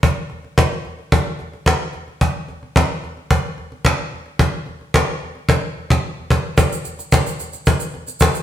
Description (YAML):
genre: disco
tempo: 110 BPM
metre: 4/4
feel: straight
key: none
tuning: none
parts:
  - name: cajon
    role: drums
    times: 0.0-8.4 s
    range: none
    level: -16 LUFS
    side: equal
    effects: none
  - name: egg shaker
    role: percussion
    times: 6.6-8.4 s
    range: none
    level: -28 LUFS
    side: right 4 dB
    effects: none
room: wet stone room reverb, RT60 1.1 s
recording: band playing live in one room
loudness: -17 LUFS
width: side -11 dB against mid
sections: 0.0-6.6 A section; 6.6-8.4 B section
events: band accent 5.5-6.6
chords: none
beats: | 0.04 0.58 1.13 1.67 | 2.22 2.76 3.31 3.85 | 4.40 4.95 5.49 6.04 | 6.58 7.12 7.67 8.21